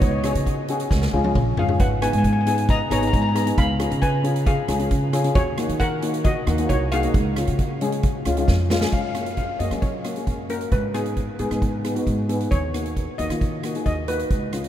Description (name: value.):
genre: calypso.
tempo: 134 BPM.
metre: 4/4.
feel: straight.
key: F# major.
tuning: A4 = 440 Hz.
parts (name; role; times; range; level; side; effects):
steel pan; melody; 0.0-14.7 s; F#4 to B5; -27 LUFS; left 1 dB; none.
steel pan; accompaniment; 0.0-14.7 s; G#3 to G#4; -25 LUFS; left 2 dB; none.
upright bass; bass; 0.0-14.7 s; G#1 to F#3; -24 LUFS; right 1 dB; none.
street-band drum kit; drums; 0.0-14.7 s; hi-hat, kick drum, rim click, snare drum, toms; -25 LUFS; equal; none.
room: moderate huge ambient reverb, RT60 7.3 s.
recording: in a vast, echoing space.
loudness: -19 LUFS.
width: side -11 dB against mid.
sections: 0.0-8.9 A section; 8.9-14.7 B section.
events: drum fill 0.9-1.8, 8.5-8.9.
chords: 0.0 C#sus4; 0.9 C#; 1.8 G#m; 3.6 C#7; 5.4 D#m7; 7.1 C#; 8.9 F#; 10.7 G#m; 12.5 D#m7.